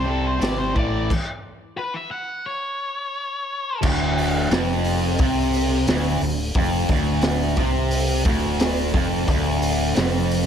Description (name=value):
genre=blues rock power trio and southern rock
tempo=88 BPM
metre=4/4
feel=straight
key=unclear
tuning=A4 = 440 Hz
part: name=octave-fuzz lead guitar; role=melody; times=0.0-3.8 s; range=A4 to F#5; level=-27 LUFS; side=left 2 dB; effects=distortion
part: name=sludgy distorted guitar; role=riff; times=0.0-10.5 s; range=D2 to C4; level=-22 LUFS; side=equal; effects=overdrive
part: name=fingered electric bass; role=bass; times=0.0-10.5 s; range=D1 to C2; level=-25 LUFS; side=equal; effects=none
part: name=raw garage drum kit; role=drums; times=0.4-10.5 s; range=crash cymbal, hi-hat, kick drum, snare drum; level=-23 LUFS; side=equal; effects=none
room=light reverb, studio reverb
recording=none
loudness=-19 LUFS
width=side -8 dB against mid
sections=0.0-3.8 A section; 3.8-10.5 B section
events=stop 1.1-3.8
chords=0.0 C5; 0.8 A; 3.8 Dm7